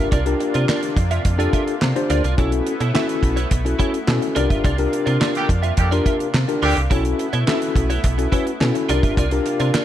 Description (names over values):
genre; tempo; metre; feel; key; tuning
early-eighties boogie funk; 106 BPM; 4/4; straight; unclear; A4 = 440 Hz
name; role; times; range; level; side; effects
mellow tine electric piano; accompaniment; 0.0-9.8 s; C#4 to C5; -22 LUFS; left 4 dB; medium stereo tremolo
lush unison pad; sustained chords; 0.0-9.8 s; C3 to F4; -29 LUFS; right 1 dB; chorus
clean electric guitar; riff; 0.0-9.8 s; E4 to E5; -27 LUFS; right 5 dB; analog chorus
slap-like FM bass; bass; 0.0-9.7 s; G1 to C3; -21 LUFS; equal; none
damped 70s drum kit; drums; 0.1-9.8 s; handclaps, hi-hat, kick drum, snare drum; -21 LUFS; right 1 dB; gated reverb
warm horn section; second line; 5.4-6.8 s; D3 to G4; -25 LUFS; right 2 dB; none
room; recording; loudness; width
small room ambience; none; -17 LUFS; side -11 dB against mid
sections
0.0-9.8 A section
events
band accent 4.6-6.9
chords
0.0 C9sus4; 2.4 B9sus4; 4.4 C9sus4; 6.9 B9sus4; 8.9 C9sus4